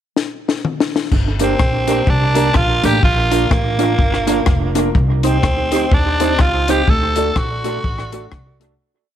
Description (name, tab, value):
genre	ska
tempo	125 BPM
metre	4/4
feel	swing 59% on 8ths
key	G minor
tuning	A4 = 441 Hz
part	compact cocktail drum kit	drums	0.2-8.7 s	crash cymbal, hi-hat, kick drum, rim click, snare drum, toms	-18 LUFS	left 2 dB	tape echo
part	upright bass	bass	1.1-8.7 s	F1 to Eb2	-20 LUFS	equal	none
part	breathy tenor saxophone	melody	1.4-8.6 s	Bb3 to A4	-19 LUFS	right 1 dB	none
part	mellow electric guitar	accompaniment	1.4-8.7 s	D4 to D5	-22 LUFS	right 11 dB	tape echo
part	clear upright piano	stabs	1.4-8.7 s	A3 to C5	-24 LUFS	left 9 dB	none
room	light reverb, studio reverb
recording	1960s-style stereo with parts hard left and right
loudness	-14 LUFS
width	side -10 dB against mid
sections	0.0-1.1 pickup bar; 1.1-8.8 head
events	drum fill 0.2-1.1; fade-out 6.9-8.8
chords	0.0 N.C.; 1.1 Gm; 3.0 Bb; 5.0 Cm; 6.9 D